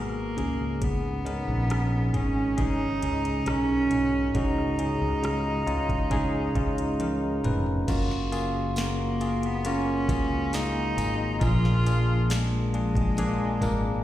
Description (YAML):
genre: pop ballad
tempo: 68 BPM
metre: 4/4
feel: straight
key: F# major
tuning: A4 = 440 Hz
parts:
  - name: warm cello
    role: melody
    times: 0.0-14.0 s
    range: G#3 to E#4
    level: -29 LUFS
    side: right 1 dB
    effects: slapback echo
  - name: bell-like tine electric piano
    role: accompaniment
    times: 0.0-14.0 s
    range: G#2 to B4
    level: -30 LUFS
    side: left 2 dB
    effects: slapback echo
  - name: nylon-string guitar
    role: arpeggios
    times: 0.0-14.0 s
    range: G#2 to A#4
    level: -34 LUFS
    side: right 1 dB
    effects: slapback echo
  - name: mellow fretless electric bass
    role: bass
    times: 0.0-14.0 s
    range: E#1 to C#2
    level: -29 LUFS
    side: equal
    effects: none
  - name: smooth R&B drum kit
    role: drums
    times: 0.4-13.8 s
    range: crash cymbal, hi-hat, kick drum, rim click, snare drum, toms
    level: -30 LUFS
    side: equal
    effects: none
  - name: tambourine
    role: percussion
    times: 7.9-13.8 s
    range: none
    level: -46 LUFS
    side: right 4 dB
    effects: slapback echo
room: light reverb, digital ambience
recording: live gig heard through the venue's PA, recital hall reverb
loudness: -24 LUFS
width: side -13 dB against mid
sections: 0.0-7.9 A section; 7.9-14.0 B section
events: drum fill 7.0-7.9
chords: 0.4 C#sus2; 7.9 F#maj7; 11.4 A#7